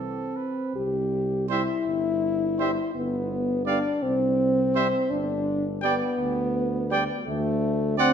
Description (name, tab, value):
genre	classical, brass quintet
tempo	55 BPM (dotted quarters)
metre	6/8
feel	rubato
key	C major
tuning	A4 = 440 Hz
part	clear trumpet	second line	0.0-8.1 s	A4 to D5	-31 LUFS	right 8 dB	none
part	bright trombone	accompaniment	0.0-8.1 s	E3 to C4	-33 LUFS	right 4 dB	none
part	mellow French horn	accompaniment	0.0-8.1 s	A3 to G4	-25 LUFS	left 2 dB	none
part	mellow tuba	bass	0.0-8.1 s	G1 to D2	-30 LUFS	right 4 dB	none
part	clear trumpet	melody	1.5-8.1 s	E5 to G5	-31 LUFS	left 6 dB	none
room	wet recital hall reverb, RT60 1.5 s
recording	none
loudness	-23 LUFS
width	side -8 dB against mid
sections	0.8-8.1 A section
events	none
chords	0.0 C; 3.0 G; 4.0 N.C.; 5.1 G; 7.3 D7(no3)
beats	| 0.76 1.87 | 2.95 4.03 | 5.11 6.19 | 7.27